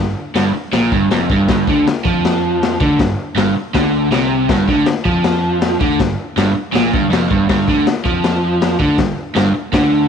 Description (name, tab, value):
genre	garage rock duo or trio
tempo	160 BPM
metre	4/4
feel	straight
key	unclear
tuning	A4 = 440 Hz
part	overdriven electric guitar	riff	0.0-10.1 s	F2 to F3	-15 LUFS	right 1 dB	none
part	fuzz picked electric bass	bass	0.0-10.1 s	F1 to F2	-24 LUFS	right 1 dB	overdrive, tube saturation
part	raw garage drum kit	drums	0.3-9.8 s	hi-hat, kick drum, snare drum	-18 LUFS	left 4 dB	none
room	light reverb, studio reverb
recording	1960s-style stereo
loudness	-13 LUFS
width	side -7 dB against mid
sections	0.0-10.1 A section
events	none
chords	0.0 G5